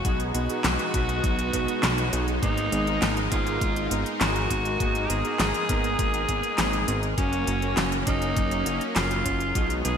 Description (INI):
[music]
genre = synthwave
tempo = 101 BPM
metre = 4/4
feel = straight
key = G# dorian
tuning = A4 = 438 Hz
[part]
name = raspy alto saxophone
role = melody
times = 0.0-10.0 s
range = C#4 to G#4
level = -28 LUFS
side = equal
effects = vintage 12-bit sampler grit, ping-pong delay
[part]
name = soft supersaw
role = sustained chords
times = 0.0-10.0 s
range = F#3 to A#4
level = -31 LUFS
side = equal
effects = phaser, sidechain pumping
[part]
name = thumb-piano-like synth pluck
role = arpeggios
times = 0.0-10.0 s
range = F#3 to C#4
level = -36 LUFS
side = left 2 dB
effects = none
[part]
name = clear electric grand piano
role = stabs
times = 0.0-10.0 s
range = G#2 to C#5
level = -33 LUFS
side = right 3 dB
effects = ensemble chorus
[part]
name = fat analog bass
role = bass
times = 0.0-10.0 s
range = F#1 to B1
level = -29 LUFS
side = equal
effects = sidechain pumping
[part]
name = electronic kick drum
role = drums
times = 0.0-9.7 s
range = none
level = -28 LUFS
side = equal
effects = none
[part]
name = pop drum kit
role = drums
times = 0.0-10.0 s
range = handclaps, hi-hat, snare drum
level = -29 LUFS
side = equal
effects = gated reverb
[sound]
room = moderate lush hall reverb, RT60 2.4 s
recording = bright 1980s-style digital production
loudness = -22 LUFS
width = side -7 dB against mid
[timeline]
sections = 0.0-10.0 A section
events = none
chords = 0.0 B6; 2.4 G#madd9; 7.2 F#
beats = | 0.05 0.64 1.24 1.83 | 2.42 3.02 3.61 4.21 | 4.80 5.39 5.99 6.58 | 7.18 7.77 8.37 8.96 | 9.55